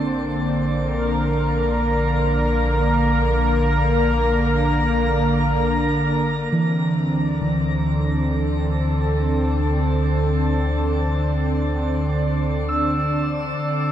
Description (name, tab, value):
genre	ambient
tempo	free time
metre	none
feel	none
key	unclear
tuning	A4 = 440 Hz
part	warm analog pad	sustained chords	0.0-13.9 s	D3 to D5	-20 LUFS	equal	chorus
part	warm sub bass	bass	0.0-13.9 s	Bb1 to D2	-24 LUFS	left 1 dB	none
part	muted felt-like synth keys	arpeggios	6.5-13.9 s	D3 to E6	-25 LUFS	right 1 dB	chorus, diffuse ambient delay
room	wet shimmer reverb, RT60 7.2 s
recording	none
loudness	-18 LUFS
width	side -10 dB against mid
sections	0.0-6.5 A section; 6.5-13.9 B section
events	none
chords	0.0 Bb; 6.5 D5